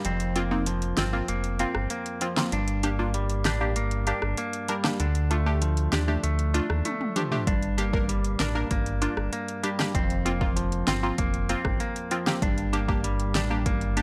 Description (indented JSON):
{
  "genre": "dancehall",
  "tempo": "97 BPM",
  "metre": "4/4",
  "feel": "straight",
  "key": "G minor",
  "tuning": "A4 = 442 Hz",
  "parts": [
    { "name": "wavetable chord stab", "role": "accompaniment", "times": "0.0-14.0 s", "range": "A3 to Bb4", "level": "-33 LUFS", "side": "equal", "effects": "phaser" },
    { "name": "semi-hollow electric guitar", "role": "arpeggios", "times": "0.0-14.0 s", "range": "F2 to D4", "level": "-32 LUFS", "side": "equal", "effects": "none" },
    { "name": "sub bass with octave", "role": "bass", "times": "0.0-14.0 s", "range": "F1 to Eb2", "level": "-30 LUFS", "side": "equal", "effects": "none" },
    { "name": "deep house drum kit", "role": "drums", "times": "0.0-14.0 s", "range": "hi-hat, kick drum, rim click, snare drum, toms", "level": "-32 LUFS", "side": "equal", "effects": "overdrive" }
  ],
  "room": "little or no reverb",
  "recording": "dry, gritty hardware recording",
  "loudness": "-27 LUFS",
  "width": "mono",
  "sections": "0.0-14.0 A section",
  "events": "break 0.0-7.5; drum fill 6.9-7.5",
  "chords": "0.0 Fsus4; 2.5 Gm; 5.0 Dm; 7.5 Gm; 9.9 Fsus4; 12.4 Gm"
}